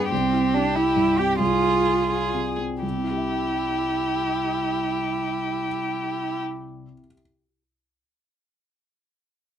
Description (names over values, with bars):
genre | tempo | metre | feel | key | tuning
quick classical-period movement for piano trio | 79-95 BPM (dotted quarters) | 6/8 | rubato | C major | A4 = 439 Hz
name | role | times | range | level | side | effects
rich violin | melody | 0.0-6.4 s | G4 to Ab4 | -28 LUFS | left 6 dB | none
warm cello | second line | 0.0-6.4 s | C4 to G4 | -24 LUFS | right 4 dB | none
dark concert grand piano | accompaniment | 0.0-7.2 s | C2 to E5 | -28 LUFS | equal | none
room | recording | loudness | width
light reverb | close, detailed microphones | -21 LUFS | side -9 dB against mid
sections
0.0-2.8 A section; 2.8-5.7 B section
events
slowing down 0.0-2.8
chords
0.1 C; 1.4 Fm/C; 2.8 C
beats
| 0.11 0.75 | 1.40 2.09 | 2.83 3.54 | 4.24 4.95